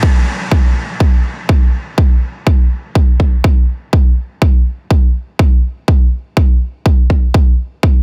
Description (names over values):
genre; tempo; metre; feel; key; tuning
house; 123 BPM; 4/4; straight; none; none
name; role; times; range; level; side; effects
electronic kick drum; drums; 0.0-7.9 s; none; -12 LUFS; equal; overdrive, studio ambience
room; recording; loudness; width
digital ambience; none; -13 LUFS; mono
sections
0.0-8.0 A section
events
none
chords
none